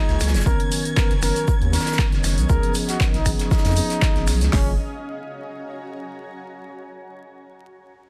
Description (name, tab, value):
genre	deep house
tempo	118 BPM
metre	4/4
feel	swing 54% on 16ths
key	F# major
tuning	A4 = 444 Hz
part	trumpet with bucket mute	melody	0.0-4.7 s	C#4 to A#4	-31 LUFS	equal	tape echo
part	mellow tine electric piano	stabs	0.0-4.7 s	D#3 to B4	-30 LUFS	equal	sidechain pumping
part	granular cloud pad	texture	0.2-6.5 s	F#3 to A#5	-38 LUFS	equal	built-in reverb, sidechain pumping
part	soft string machine	texture	0.0-4.5 s	G#6	-40 LUFS	equal	ensemble chorus, sidechain pumping
part	round analog bass	bass	0.1-4.8 s	F#1 to E#2	-24 LUFS	equal	tube saturation, sidechain pumping
part	natural country drum kit	drums	0.1-4.5 s	hi-hat, shaker, snare drum	-36 LUFS	equal	sidechain pumping on hats, high-pass filter on hats, high-pass filter on snare, sidechain pumping on perc, high-pass filter on perc, high-pass filter on room
part	punchy analog drum machine	drums	0.1-4.5 s	finger snaps, handclaps, hi-hat	-30 LUFS	equal	overdrive
part	tube shaker	percussion	0.2-4.5 s	none	-36 LUFS	equal	none
part	deep house drum kit	drums	0.5-4.7 s	hi-hat, kick drum, snare drum	-23 LUFS	equal	none
room	small room ambience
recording	dense, heavily limited modern master, vinyl crackle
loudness	-20 LUFS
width	mono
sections	0.0-4.5 A section; 4.5-6.6 B section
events	drop 0.0-4.5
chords	0.5 Bmaj9; 2.5 C#7; 4.5 F#add9